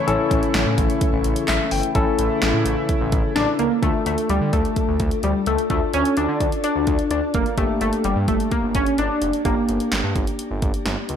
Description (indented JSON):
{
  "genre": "synth-pop",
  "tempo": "128 BPM",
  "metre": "4/4",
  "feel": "straight",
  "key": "D harmonic minor",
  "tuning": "A4 = 442 Hz",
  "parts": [
    { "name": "funky polysynth comp", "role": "melody", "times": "0.0-9.9 s", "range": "G3 to C#5", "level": "-22 LUFS", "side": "left 1 dB", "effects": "chorus, shimmer reverb" },
    { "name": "barky tine electric piano", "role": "accompaniment", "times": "0.0-11.2 s", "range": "Bb3 to G5", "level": "-25 LUFS", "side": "left 6 dB", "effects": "medium stereo tremolo, shimmer reverb" },
    { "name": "chorused pulse-width pad", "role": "sustained chords", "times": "0.0-3.8 s", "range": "C#3 to E4", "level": "-27 LUFS", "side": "right 1 dB", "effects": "shimmer reverb" },
    { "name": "smooth synth bass", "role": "bass", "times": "0.1-11.2 s", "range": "F1 to D3", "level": "-26 LUFS", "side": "right 1 dB", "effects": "none" },
    { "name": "deep house drum kit", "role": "drums", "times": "0.1-11.2 s", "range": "handclaps, hi-hat, kick drum, snare drum", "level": "-23 LUFS", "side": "right 1 dB", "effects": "gated reverb" }
  ],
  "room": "light reverb, digital ambience",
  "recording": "none",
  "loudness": "-18 LUFS",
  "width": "side -8 dB against mid",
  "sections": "0.0-2.0 A section; 2.0-3.8 B section; 3.8-11.2 C section",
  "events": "tine electric piano fill 1.2-2.0",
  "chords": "0.0 A; 3.8 Dm; 7.6 Gm",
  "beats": "| 0.08 0.55 1.01 1.48 | 1.95 2.42 2.89 3.36 | 3.83 4.29 4.76 5.23 | 5.70 6.17 6.64 7.11 | 7.58 8.04 8.51 8.98 | 9.45 9.92 10.39 10.86"
}